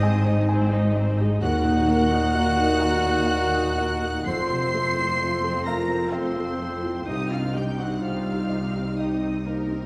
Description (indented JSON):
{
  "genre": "cinematic",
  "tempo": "64 BPM",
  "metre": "3/4",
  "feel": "rubato",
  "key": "Eb dorian",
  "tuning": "A4 = 440 Hz",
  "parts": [
    { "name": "warm chamber violin section", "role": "melody", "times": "0.0-9.9 s", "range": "Bb5 to C7", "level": "-35 LUFS", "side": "equal", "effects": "none" },
    { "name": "concert flute", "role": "second line", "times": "0.0-9.9 s", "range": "Bb4 to C6", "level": "-32 LUFS", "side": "equal", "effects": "none" },
    { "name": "warm clarinet", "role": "second line", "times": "0.0-9.9 s", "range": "Bb3 to C5", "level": "-34 LUFS", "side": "equal", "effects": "none" },
    { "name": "warm symphonic violin section", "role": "second line", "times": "0.0-9.9 s", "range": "Bb4 to C6", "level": "-37 LUFS", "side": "equal", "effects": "none" },
    { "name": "felt-muted upright piano", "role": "accompaniment", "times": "0.0-9.9 s", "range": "C2 to Ab5", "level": "-32 LUFS", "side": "equal", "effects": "none" },
    { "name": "rich symphonic viola section", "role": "accompaniment", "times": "0.0-9.9 s", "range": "A3 to Eb5", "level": "-35 LUFS", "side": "equal", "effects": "none" },
    { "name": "mellow French horn section", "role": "sustained chords", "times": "0.0-9.9 s", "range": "Bb2 to F4", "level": "-31 LUFS", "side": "equal", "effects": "none" },
    { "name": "dark symphonic double bass section", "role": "bass", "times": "0.0-9.9 s", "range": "F1 to Eb2", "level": "-31 LUFS", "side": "equal", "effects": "none" },
    { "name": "warm symphonic cello section", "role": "bass", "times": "0.0-9.9 s", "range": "Eb2 to C3", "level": "-32 LUFS", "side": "equal", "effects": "none" }
  ],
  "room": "wet recital hall reverb, RT60 1.6 s",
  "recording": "recorded in a church or concert hall",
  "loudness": "-24 LUFS",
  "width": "mono",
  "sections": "0.0-9.9 A section",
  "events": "none",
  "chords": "0.0 Ab; 1.4 Ebm; 4.3 F; 7.1 Cm"
}